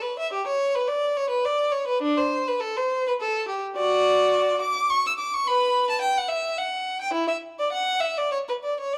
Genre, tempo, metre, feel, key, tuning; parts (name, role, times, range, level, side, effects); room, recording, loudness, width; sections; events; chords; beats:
classical, baroque-style suite movement for unaccompanied violin; 105 BPM; 3/4; rubato; B minor, D major from 3.8 s; A4 = 441 Hz
clear violin; solo; 0.0-9.0 s; D4 to E6; -24 LUFS; equal
light reverb; close, detailed microphones, vinyl crackle; -24 LUFS; mono
0.0-9.0 A section
| 0.29 0.87 1.44 | 2.03 2.61 3.19 | 3.76 4.33 4.90 | 5.46 6.03 6.59 | 7.16 7.74 8.33 | 8.94